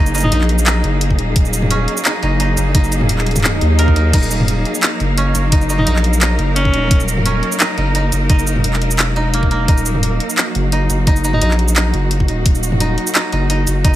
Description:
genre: half-time drum and bass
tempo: 173 BPM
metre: 4/4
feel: half-time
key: Eb minor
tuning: A4 = 440 Hz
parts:
  - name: bright symphonic cello section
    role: sustained chords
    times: 0.0-14.0 s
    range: Gb3 to Bb4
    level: -22 LUFS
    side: equal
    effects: vintage 12-bit sampler grit, sidechain pumping
  - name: koto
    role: arpeggios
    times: 0.0-14.0 s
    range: Bb3 to Bb4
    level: -23 LUFS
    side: right 2 dB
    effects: tape echo
  - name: saturated sub bass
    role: bass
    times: 0.0-14.0 s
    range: Eb1 to Eb2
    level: -16 LUFS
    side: equal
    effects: none
  - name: drum and bass drum kit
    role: drums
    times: 0.1-13.9 s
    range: crash cymbal, handclaps, hi-hat, shaker, toms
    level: -19 LUFS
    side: equal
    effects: none
  - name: bright alto saxophone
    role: melody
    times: 0.2-0.4, 5.8-7.0, 11.3-11.5 s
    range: Db4 to Eb4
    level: -23 LUFS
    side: equal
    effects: tape echo
  - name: electronic kick drum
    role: drums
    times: 1.1-13.9 s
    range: none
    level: -13 LUFS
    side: equal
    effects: none
  - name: swell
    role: sound effects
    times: 3.5-4.1 s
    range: none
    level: -24 LUFS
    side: equal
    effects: none
room: little or no reverb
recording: none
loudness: -13 LUFS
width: side -14 dB against mid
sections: 0.0-14.0 A section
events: swell 3.5-4.1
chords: 0.0 Ebm

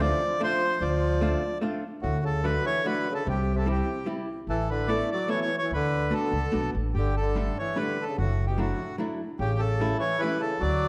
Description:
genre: musette waltz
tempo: 147 BPM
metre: 3/4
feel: straight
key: D major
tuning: A4 = 440 Hz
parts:
  - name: accordion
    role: melody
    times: 0.0-10.9 s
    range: F#4 to D5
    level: -32 LUFS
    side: equal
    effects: none
  - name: breathy tenor saxophone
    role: second line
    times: 0.0-10.9 s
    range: A2 to A3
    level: -34 LUFS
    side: equal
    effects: none
  - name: archtop guitar, miked and amplified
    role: accompaniment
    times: 0.0-10.4 s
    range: F#3 to A4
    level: -35 LUFS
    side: equal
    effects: none
  - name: upright bass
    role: bass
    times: 0.0-10.9 s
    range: F#1 to D2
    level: -31 LUFS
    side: equal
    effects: none
room: wet recital hall reverb, RT60 1.4 s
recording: dark, warm production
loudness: -27 LUFS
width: mono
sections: 0.0-2.0 A section; 2.0-10.9 B section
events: none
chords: 0.0 Dm7; 2.0 D; 3.3 C; 4.5 Asus2; 5.7 D6; 6.9 Gsus2; 8.2 Dadd9/F#; 9.4 A7

